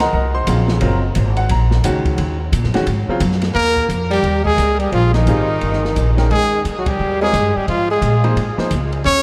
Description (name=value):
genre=modal jazz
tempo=175 BPM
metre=4/4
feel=swing 63% on 8ths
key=Eb mixolydian from 3.6 s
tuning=A4 = 440 Hz
part: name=bright upright piano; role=accompaniment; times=0.0-3.2, 5.3-8.7 s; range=Db3 to C6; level=-25 LUFS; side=equal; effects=none
part: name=upright bass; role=bass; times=0.0-9.2 s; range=Gb1 to Bb2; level=-20 LUFS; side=equal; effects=none
part: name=open jazz drum kit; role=drums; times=0.0-9.2 s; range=hi-hat, kick drum, ride cymbal, snare drum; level=-29 LUFS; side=equal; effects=none
part: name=clear trumpet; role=melody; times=3.5-9.2 s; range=Eb4 to Db5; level=-20 LUFS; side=equal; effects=tape echo
part: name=breathy tenor saxophone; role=second line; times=3.5-9.2 s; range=Eb3 to Db4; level=-24 LUFS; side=equal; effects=none
room=moderate huge ambient reverb, RT60 8.0 s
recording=dreamy mix soaked in reverb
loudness=-17 LUFS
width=mono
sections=0.0-3.6 A section; 3.6-9.2 B section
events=band accent 6.8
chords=0.0 Ebm; 3.6 Eb9; 6.3 Ab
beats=0.13 0.47 | 0.81 1.15 1.50 1.84 | 2.18 2.52 2.87 3.21 | 3.55 3.89 4.24 4.58 | 4.92 5.27 5.61 5.96 | 6.30 6.64 6.99 7.33 | 7.67 8.02 8.36 8.71 | 9.05